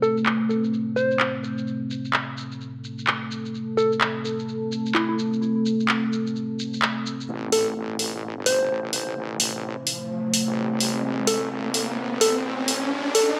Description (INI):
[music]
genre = bass house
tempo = 128 BPM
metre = 4/4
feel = swing 60% on 16ths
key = A minor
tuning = A4 = 442 Hz
[part]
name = soft struck synth lead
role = melody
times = 0.0-13.3 s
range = E4 to C5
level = -27 LUFS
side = equal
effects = chorus, digital delay
[part]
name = deep dark ambient pad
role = sustained chords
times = 0.0-13.4 s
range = A3 to C5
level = -29 LUFS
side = equal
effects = chorus, built-in reverb
[part]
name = garage drum kit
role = drums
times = 0.0-13.3 s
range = handclaps, hi-hat, shaker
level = -27 LUFS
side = equal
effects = low-pass filter on cymbals, studio reverb, low-pass filter on perc, low-pass filter on snare, low-pass filter on hats
[part]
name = wobble bass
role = bass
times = 7.3-13.4 s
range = G1 to A1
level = -34 LUFS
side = equal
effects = chorus, overdrive, high-pass filter
[part]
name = riser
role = sound effects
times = 9.2-13.4 s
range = none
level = -33 LUFS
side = equal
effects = none
[sound]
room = moderate plate reverb, RT60 1.5 s, digital ambience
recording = high-pass filter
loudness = -25 LUFS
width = mono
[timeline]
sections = 0.0-7.3 A section; 7.3-13.4 B section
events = filter sweep on ambient pad 0.0-7.3, 7.3-13.4; build-up 7.3-13.4; riser 9.2-13.4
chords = 0.0 Am